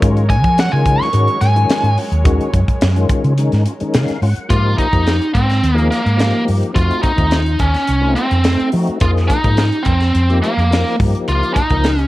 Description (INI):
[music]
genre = electric jazz fusion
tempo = 106 BPM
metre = 4/4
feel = straight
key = Ab major from 4.5 s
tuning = A4 = 440 Hz
[part]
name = tonewheel organ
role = accompaniment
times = 0.0-12.1 s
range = Eb3 to Gb5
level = -21 LUFS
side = left 3 dB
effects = overdrive, chorus vibrato, slow rotary speaker
[part]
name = brassy analog pad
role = sustained chords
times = 0.0-4.5 s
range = Gb3 to Db5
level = -28 LUFS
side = equal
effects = chorus
[part]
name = hollow-body short-scale fingered electric bass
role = bass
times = 0.0-12.1 s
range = C2 to F3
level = -15 LUFS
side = equal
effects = none
[part]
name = tight funk drum kit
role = drums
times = 0.0-12.1 s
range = hi-hat, kick drum, snare drum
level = -18 LUFS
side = equal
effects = none
[part]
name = biting lead guitar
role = melody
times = 0.3-12.1 s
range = Bb3 to Db6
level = -18 LUFS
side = equal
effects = overdrive
[sound]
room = light reverb, small room ambience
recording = dark, warm production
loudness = -12 LUFS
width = side -17 dB against mid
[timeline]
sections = 0.0-4.5 A section; 4.5-12.1 B section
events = lead electric guitar solo 0.0-4.5; tonewheel organ fill 3.7-4.5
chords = 0.0 Ab9sus4; 4.5 Ab69; 6.8 F7b9; 9.0 Bb9sus4/F; 11.0 Eb7